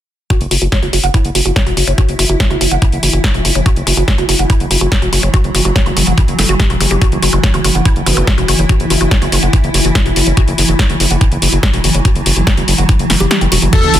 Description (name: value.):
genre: psychedelic trance.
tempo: 143 BPM.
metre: 4/4.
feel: straight.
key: unclear.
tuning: A4 = 440 Hz.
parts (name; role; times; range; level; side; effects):
swarming drone; sustained chords; 1.4-14.0 s; E3 to E4; -19 LUFS; equal; built-in reverb, sidechain pumping.
woody wave-folded pluck; riff; 0.3-14.0 s; E4 to G5; -20 LUFS; moving between left 7 dB and right 6 dB; chorus, auto-pan, sidechain pumping, dub echo.
electronic kick drum; drums; 0.3-13.8 s; none; -13 LUFS; equal; small room ambience.
techno drum kit; drums; 0.3-14.0 s; crash cymbal, hi-hat, snare drum; -16 LUFS; left 1 dB; overdrive, small room ambience.
round analog bass; bass; 0.4-14.0 s; E1 to F#1; -15 LUFS; equal; none.
vowel-sweep wobble bass; second line; 8.1-9.1 s; B3 to E4; -27 LUFS; left 1 dB; lush chorus, sidechain pumping, high-pass filter, tape echo.
overdriven synth lead; melody; 13.7-13.9 s; A4; -13 LUFS; left 1 dB; distortion, chorus, phaser, cassette tape, sidechain pumping.
sub drop; sound effects; 13.7-14.0 s; none; -18 LUFS; equal; none.
warbly tape-like pad; texture; 13.8-14.0 s; C#4; -23 LUFS; right 8 dB; chorus, built-in reverb, sidechain pumping.
room: digital ambience.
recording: dense, heavily limited modern master.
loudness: -10 LUFS.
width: side -11 dB against mid.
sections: 0.3-13.7 A section.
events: filter sweep on synth arpeggio sound 0.3-13.7; kick drops out 13.3-13.7; impact 13.7.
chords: 0.3 F#5.